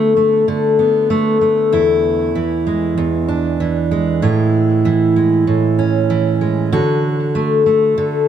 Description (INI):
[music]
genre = folktronica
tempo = 96 BPM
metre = 4/4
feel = swing 56% on 16ths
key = D lydian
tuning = A4 = 440 Hz
[part]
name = fingerpicked steel-string acoustic guitar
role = solo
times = 0.0-8.3 s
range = E2 to F#4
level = -13 LUFS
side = equal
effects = tape echo
[sound]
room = light reverb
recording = none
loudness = -13 LUFS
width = side -9 dB against mid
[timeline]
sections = 0.0-8.3 A section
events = none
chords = 0.0 D6; 1.7 E7; 4.2 Amaj7; 6.7 D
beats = 0.47 1.10 | 1.73 2.35 2.98 3.60 | 4.22 4.85 5.47 6.10 | 6.72 7.35 7.97